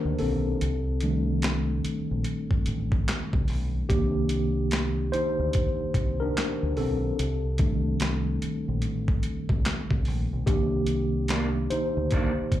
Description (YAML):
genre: R&B, neo-soul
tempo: 73 BPM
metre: 4/4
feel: swing 62% on 16ths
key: C dorian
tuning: A4 = 440 Hz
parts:
  - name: mellow tine electric piano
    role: accompaniment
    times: 0.0-12.6 s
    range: Eb3 to C5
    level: -28 LUFS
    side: left 1 dB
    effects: medium stereo tremolo, slapback echo
  - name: deep dub fingered electric bass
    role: bass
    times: 0.1-12.6 s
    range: A1 to D2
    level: -28 LUFS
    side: equal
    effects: none
  - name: boom bap sampler-style drum kit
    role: drums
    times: 0.2-12.6 s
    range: handclaps, hi-hat, kick drum, snare drum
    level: -27 LUFS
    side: equal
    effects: overdrive
  - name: electric guitar through a small old amp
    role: second line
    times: 11.3-12.3 s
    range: Eb3 to D4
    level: -31 LUFS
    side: right 3 dB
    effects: slapback echo
room: light reverb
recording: live gig heard through the venue's PA, club reverb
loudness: -24 LUFS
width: side -13 dB against mid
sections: 0.0-12.6 A section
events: tine electric piano solo 0.0-12.6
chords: 0.0 Cm9; 0.6 Am7b5; 3.9 Cm9; 7.2 Cm69; 10.5 Cm9